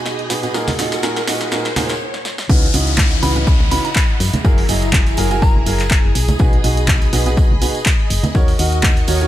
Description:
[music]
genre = piano house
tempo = 123 BPM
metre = 4/4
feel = swing 54% on 16ths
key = C# dorian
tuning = A4 = 440 Hz
[part]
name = string machine, violins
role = sustained chords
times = 0.0-9.3 s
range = E3 to C#6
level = -26 LUFS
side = left 1 dB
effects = ensemble chorus, sidechain pumping
[part]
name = clear upright piano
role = riff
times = 0.0-9.3 s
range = A#2 to F#5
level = -22 LUFS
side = right 2 dB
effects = sidechain pumping, tape echo
[part]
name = riser and downlifter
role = sound effects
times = 0.0-6.4 s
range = none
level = -26 LUFS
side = equal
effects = none
[part]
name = punchy analog drum machine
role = drums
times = 0.1-9.3 s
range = crash cymbal, handclaps, hi-hat, snare drum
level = -21 LUFS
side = equal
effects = high-pass filter on snare, high-pass filter on hats, high-pass filter on cymbals
[part]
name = tambourine and congas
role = percussion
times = 0.1-9.3 s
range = none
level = -25 LUFS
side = right 2 dB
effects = none
[part]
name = solid FM bass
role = bass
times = 0.3-9.3 s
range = F#1 to F#2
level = -19 LUFS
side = left 1 dB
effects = sidechain pumping, high-pass filter
[part]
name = electronic kick drum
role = drums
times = 2.5-8.9 s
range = none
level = -15 LUFS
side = equal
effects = none
[part]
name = soft synth bell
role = melody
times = 3.2-5.8 s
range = G#5 to B5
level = -25 LUFS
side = right 1 dB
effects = chorus, tape echo
[sound]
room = little or no reverb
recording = none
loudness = -13 LUFS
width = side -13 dB against mid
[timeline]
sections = 0.0-2.5 A section; 2.5-9.3 B section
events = build-up 0.0-2.5; drum fill 0.0-2.0, 2.1-2.5; riser 0.0-2.0; break 2.0-2.5; drop 2.5-9.3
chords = 0.0 B6; 0.5 D#m7; 2.5 C#m11; 4.2 F#9; 6.2 B6; 8.3 D#m7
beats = 0.06 | 0.54 1.03 1.52 2.01 | 2.50 2.98 3.47 3.96 | 4.45 4.93 5.42 5.91 | 6.40 6.88 7.37 7.86 | 8.35 8.84

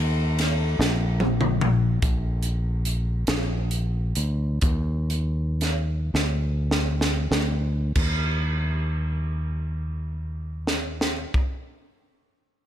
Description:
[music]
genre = slow gospel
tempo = 30-49 BPM (dotted quarters)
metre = 6/8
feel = straight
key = unclear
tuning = A4 = 440 Hz
[part]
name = fingered electric bass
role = bass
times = 0.0-11.2 s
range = Bb1 to Eb2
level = -24 LUFS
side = equal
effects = none
[part]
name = crisp fusion drum kit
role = drums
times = 0.4-11.7 s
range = crash cymbal, hi-hat, kick drum, ride cymbal, snare drum, toms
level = -25 LUFS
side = equal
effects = none
[sound]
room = little or no reverb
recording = none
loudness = -22 LUFS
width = side -11 dB against mid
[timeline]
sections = 0.0-2.0 A section; 2.0-8.0 B section; 8.0-12.0 C section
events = drum fill 0.8-2.0, 6.1-8.0; slowing down 2.0-8.0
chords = none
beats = 0.80 | 2.03 3.28 | 4.63 6.14 | 7.96 9.99

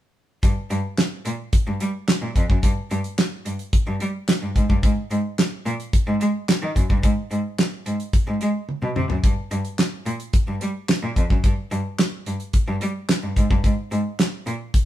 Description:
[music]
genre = early-eighties boogie funk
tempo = 109 BPM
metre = 4/4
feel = straight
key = unclear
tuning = A4 = 439 Hz
[part]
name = bright cello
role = bass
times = 0.4-14.5 s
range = F2 to Ab3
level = -24 LUFS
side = equal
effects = none
[part]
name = damped 70s drum kit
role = drums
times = 0.4-14.9 s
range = handclaps, hi-hat, kick drum, snare drum, toms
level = -20 LUFS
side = equal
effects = none
[sound]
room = light reverb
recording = band playing live in one room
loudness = -20 LUFS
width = side -13 dB against mid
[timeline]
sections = 0.4-14.9 A section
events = drum fill 8.7-9.2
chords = none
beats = | 0.43 0.98 1.53 2.08 | 2.63 3.18 3.73 4.28 | 4.83 5.38 5.93 6.48 | 7.04 7.58 8.14 8.69 | 9.24 9.79 10.34 10.89 | 11.44 11.99 12.54 13.09 | 13.64 14.19 14.74

